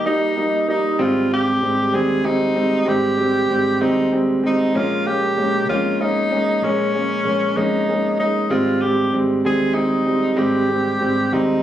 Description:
six-eight pop ballad; 64 BPM (dotted quarters); 6/8; straight; Ab major; A4 = 440 Hz
clear tenor saxophone; melody; 0.0-11.6 s; Db4 to Ab4; -21 LUFS; left 1 dB
vintage muted fingered electric bass; bass; 0.0-11.6 s; Ab1 to F2; -31 LUFS; left 1 dB
warm baby grand piano; accompaniment; 0.1-11.6 s; G3 to Eb4; -18 LUFS; right 1 dB
moderate echo chamber reverb, RT60 1.4 s, small room ambience; recorded on a phone in the room, club ambience, compression; -16 LUFS; side -11 dB against mid
0.0-1.0 A section; 1.0-11.6 B section
break 0.1-1.0
0.0 Eb; 1.0 Abmaj7; 4.8 Bbm7; 8.5 Abmaj7

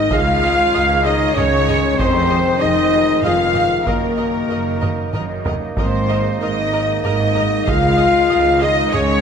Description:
cinematic, epic orchestral film score; 96 BPM; 3/4; straight; A4 = 440 Hz
rich symphonic violin section; melody; 0.0-9.2 s; Bb4 to F5; -25 LUFS; left 1 dB
rich symphonic violin section; second line; 0.0-9.2 s; Bb4 to F5; -24 LUFS; left 2 dB
dark French horn section; sustained chords; 0.0-9.2 s; Bb3 to F4; -20 LUFS; left 5 dB
dark woodwind section; sustained chords; 0.0-9.2 s; Ab3 to Eb5; -29 LUFS; equal
warm trombone section; sustained chords; 0.0-9.2 s; Eb3 to Bb3; -27 LUFS; right 5 dB
mellow trumpet section; stabs; 0.0-9.2 s; Bb4 to F5; -20 LUFS; right 1 dB
rich symphonic cello section; bass; 0.0-9.2 s; Db2 to Ab2; -24 LUFS; right 3 dB
rich symphonic double bass section; bass; 0.0-9.2 s; F1 to Db2; -24 LUFS; right 4 dB
warm studio viola section; accompaniment; 0.1-9.0 s; Ab4 to Eb5; -28 LUFS; right 1 dB
solo taiko drums; drums; 0.1-9.2 s; -25 LUFS; right 1 dB
wet scoring stage reverb, RT60 1.9 s; -14 LUFS; side -7 dB against mid
0.0-9.2 A section
drum fill 4.8-5.8
0.1 Dbsus2; 2.0 Fm7; 3.9 Ebm/Gb; 5.8 Abadd9; 7.7 Dbsus2

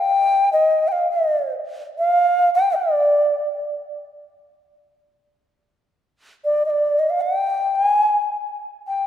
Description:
hawaiian; 108 BPM; 4/4; swing 62% on 8ths; A4 = 442 Hz
mellow bass bansuri; solo; 0.0-9.1 s; D5 to Ab5; -17 LUFS; equal
wet concert hall reverb, RT60 2.2 s; recorded in a church or concert hall; -17 LUFS; side -10 dB against mid
0.0-9.1 A section

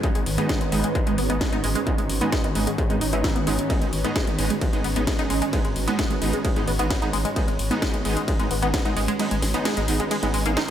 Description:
driving peak-time techno; 131 BPM; 4/4; straight; G# minor; A4 = 441 Hz
tight sequenced synth; riff; 0.0-10.6 s; G#3 to E4; -28 LUFS; equal; chorus, phaser, overdrive, sidechain pumping, analog delay
rave stab; stabs; 0.0-10.5 s; G#3 to D#4; -28 LUFS; right 2 dB; chorus, built-in reverb, cassette tape, sidechain pumping, diffuse ambient delay
swarming drone; drone; 0.0-10.7 s; G#2 to D#3; -33 LUFS; left 2 dB; built-in reverb, sidechain pumping
electronic kick drum; drums; 0.0-8.8 s; -25 LUFS; equal; distortion
techno drum kit; drums; 0.0-10.7 s; hi-hat, ride cymbal, snare drum; -30 LUFS; left 1 dB; sidechain pumping on hats, sidechain pumping on cymbals
ethereal airy pad; texture; 0.0-10.7 s; C#4 to C#5; -31 LUFS; right 3 dB; ensemble chorus, built-in reverb, phaser, sidechain pumping
saturated sub bass; bass; 0.2-10.6 s; G#1; -30 LUFS; equal; tube saturation, sidechain pumping, low-pass filter
moderate lush hall reverb, RT60 2.0 s; dreamy mix soaked in reverb; -21 LUFS; side -10 dB against mid
0.0-10.7 A section
kick drops out 9.2-10.7
0.0 G#m

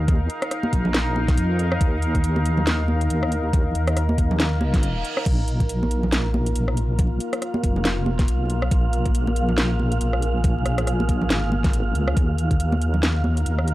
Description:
deep dubstep; 139 BPM; 4/4; swing 58% on 16ths, half-time; A4 = 443 Hz
deep dark ambient pad; sustained chords; 0.0-13.7 s; Bb3 to F5; -28 LUFS; left 1 dB; chorus, built-in reverb
deep soft wobble bass; bass; 0.0-13.7 s; F1 to F2; -22 LUFS; equal; chorus
electronic kick drum; drums; 0.1-12.6 s; -20 LUFS; equal
garage drum kit; drums; 0.1-13.7 s; crash cymbal, hi-hat, rim click, snare drum; -26 LUFS; equal
congas; percussion; 0.6-13.3 s; -28 LUFS; right 1 dB; dub echo
reverse cymbal; sound effects; 4.6-5.3 s; -33 LUFS; right 6 dB
wind-like tuned noise texture; texture; 6.3-13.7 s; F5; -33 LUFS; right 6 dB; built-in reverb
digital ambience; dry, gritty hardware recording, vinyl crackle; -19 LUFS; side -16 dB against mid
0.0-13.7 A section
reverse cymbal 4.6-5.3
0.0 Eb5; 5.3 Bb5; 12.2 Eb5

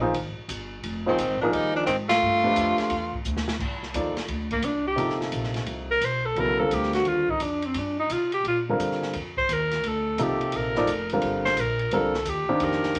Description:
modal jazz; 173 BPM; 4/4; swing 65% on 8ths; C dorian from 3.6 s; A4 = 440 Hz
bright tenor saxophone; melody; 0.0-3.2 s; C4 to F4; -26 LUFS; equal
clear alto saxophone; second line; 0.0-13.0 s; Eb3 to C5; -28 LUFS; equal
warm grand piano; accompaniment; 0.0-12.9 s; C3 to D5; -29 LUFS; equal
upright bass; bass; 0.0-13.0 s; F1 to C3; -36 LUFS; equal
open jazz drum kit; drums; 0.1-13.0 s; crash cymbal, hi-hat, kick drum, ride cymbal, snare drum; -37 LUFS; equal
wet small room reverb, RT60 0.5 s; -26 LUFS; mono
0.0-3.6 A section; 3.6-13.0 B section
band accent 2.0; drum fill 3.3-3.6; alto saxophone solo 3.6-13.0
0.0 Fm9; 2.2 G13; 3.6 C9sus4; 9.1 F9sus4

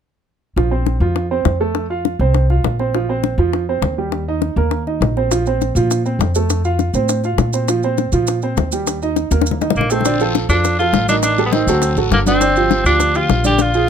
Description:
Afro-Cuban jazz; 203 BPM; 4/4; straight; Bb major; A4 = 441 Hz
warm upright piano; accompaniment; 0.6-13.9 s; D3 to F5; -19 LUFS; right 5 dB
upright bass; bass; 0.6-13.9 s; G1 to Bb2; -19 LUFS; equal
bongos; percussion; 0.6-13.7 s; -20 LUFS; left 13 dB
maracas; percussion; 5.3-13.9 s; -26 LUFS; right 6 dB
clear tenor saxophone; melody; 9.8-13.9 s; Bb3 to G4; -17 LUFS; equal
congas; percussion; 10.1-13.9 s; -24 LUFS; left 6 dB
guiro; percussion; 10.1-13.9 s; -30 LUFS; left 7 dB
little or no reverb; close, detailed microphones; -14 LUFS; side -8 dB against mid
0.6-10.1 A section; 10.1-13.9 B section
drum fill 9.3-10.1, 13.6-13.9
0.6 Bbsus2; 4.1 Eb6; 5.3 Bbsus2; 6.5 F; 7.7 Bbsus2; 8.9 Eb; 10.1 Bbmaj7; 11.2 Am7b5; 11.8 D; 12.4 Gm7

